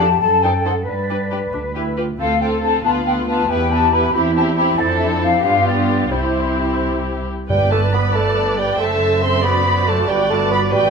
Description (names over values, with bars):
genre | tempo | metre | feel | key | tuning
quick classical-period movement for symphony orchestra | 92 BPM (dotted quarters) | 6/8 | rubato | C major, G major from 7.5 s | A4 = 440 Hz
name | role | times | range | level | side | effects
muted chamber violin section | melody | 0.0-10.9 s | G4 to E5 | -25 LUFS | left 3 dB | none
mellow flute section | second line | 0.0-7.3 s | C5 to B5 | -19 LUFS | left 4 dB | none
muted chamber violin section | second line | 0.0-10.9 s | D4 to C6 | -24 LUFS | left 3 dB | none
muted chamber viola section | accompaniment | 0.0-10.9 s | B3 to D5 | -24 LUFS | right 2 dB | none
muted chamber cello section | bass | 0.0-10.9 s | F#2 to B4 | -24 LUFS | right 3 dB | none
muted chamber double bass section | bass | 0.0-10.9 s | F#1 to G2 | -22 LUFS | right 2 dB | none
mellow bassoon | accompaniment | 7.5-10.9 s | G3 to C4 | -19 LUFS | right 2 dB | none
timpani | percussion | 7.5-8.1 s | G2 | -24 LUFS | equal | none
room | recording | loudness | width
moderate concert hall reverb, RT60 2.3 s | close, detailed microphones | -15 LUFS | side -5 dB against mid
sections
0.0-7.5 A section; 7.5-10.9 B section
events
none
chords
0.2 F#dim7; 0.9 G; 2.2 Dm7; 2.8 Bdim/D; 3.5 Em; 4.1 C/E; 4.8 Dm7/F; 5.4 G7; 6.1 C; 7.5 G; 8.8 D7/F#; 10.1 G